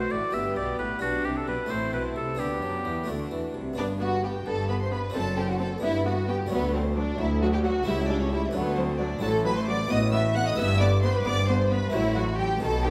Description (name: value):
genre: classical, baroque-style concerto movement with solo episodes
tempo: 88 BPM (dotted quarters)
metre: 6/8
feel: straight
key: G major, E minor from 9.2 s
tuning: A4 = 439 Hz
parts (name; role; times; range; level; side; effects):
- clear oboe; melody; 0.0-3.1 s; F#4 to E5; -32 LUFS; equal; none
- warm chamber violin section; melody; 0.0-12.9 s; B4 to F#6; -38 LUFS; equal; none
- rich studio violin section; second line; 0.0-12.9 s; B3 to F#5; -32 LUFS; equal; none
- harpsichord; accompaniment; 0.0-12.9 s; C#2 to G4; -36 LUFS; equal; none
- rich studio viola section; accompaniment; 0.0-12.9 s; D#3 to D4; -36 LUFS; equal; none
- rich chamber cello section; bass; 0.0-12.9 s; C#2 to F#3; -33 LUFS; equal; none
- rich chamber double bass section; bass; 0.0-12.9 s; F#1 to F#2; -33 LUFS; equal; none
room: wet recital hall reverb, RT60 1.5 s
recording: none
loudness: -26 LUFS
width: mono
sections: 0.0-3.8 A section; 3.8-12.9 B section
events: none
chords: 0.3 G; 1.0 G/B; 1.7 Am; 2.4 G/D; 3.1 D; 3.8 G; 5.1 D7/F#; 5.8 G; 6.5 D; 7.9 A7/C#; 8.5 D; 9.2 F#m7b5/A; 9.9 B5/A; 10.6 Em/G; 11.9 F#dim/A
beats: 0.34 | 1.02 1.70 | 2.39 3.09 | 3.78 4.46 | 5.14 5.83 | 6.51 7.19 | 7.87 8.54 | 9.22 9.90 | 10.58 11.25 | 11.93 12.62